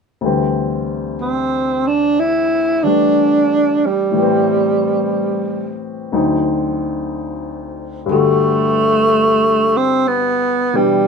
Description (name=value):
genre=jazz ballad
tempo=61 BPM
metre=4/4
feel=swing 67% on 8ths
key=G major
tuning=A4 = 440 Hz
part: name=warm upright piano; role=accompaniment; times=0.2-11.1 s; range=D2 to A4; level=-19 LUFS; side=left 5 dB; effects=none
part: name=growling tenor saxophone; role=melody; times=1.2-11.1 s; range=G3 to E4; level=-14 LUFS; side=right 2 dB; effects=none
room=moderate club ambience, RT60 0.5 s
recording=minimal, uncompressed stereo recording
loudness=-14 LUFS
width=side -5 dB against mid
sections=0.2-8.1 A section; 8.1-11.1 B section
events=none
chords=0.2 D7sus4; 4.2 Am7; 6.1 D7b9; 8.1 Gmaj9